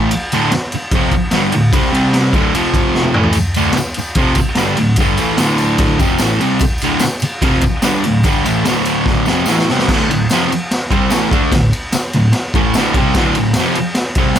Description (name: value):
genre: garage rock duo or trio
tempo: 147 BPM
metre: 4/4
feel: straight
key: D minor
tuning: A4 = 440 Hz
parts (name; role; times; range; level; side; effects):
- fuzz guitar; riff; 0.0-14.4 s; D2 to D4; -14 LUFS; equal; distortion
- raw garage drum kit; drums; 0.1-14.4 s; crash cymbal, kick drum, ride cymbal, snare drum, toms; -16 LUFS; equal; none
- tambourine; percussion; 3.3-14.4 s; none; -29 LUFS; left 1 dB; none
room: little or no reverb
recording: none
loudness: -12 LUFS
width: side -10 dB against mid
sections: 0.0-9.9 A section; 9.9-14.4 B section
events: drum fill 3.0-3.4, 9.1-9.9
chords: 0.0 Dm; 1.9 C5; 2.3 D5; 2.5 F5; 3.2 Dm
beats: | 0.11 0.52 0.92 1.33 | 1.74 2.14 2.55 2.95 | 3.36 3.77 4.17 4.58 | 4.99 5.39 5.80 6.21 | 6.62 7.02 7.43 7.84 | 8.25 8.66 9.06 9.47 | 9.88 10.29 10.70 11.11 | 11.52 11.92 12.33 12.74 | 13.15 13.56 13.97 14.37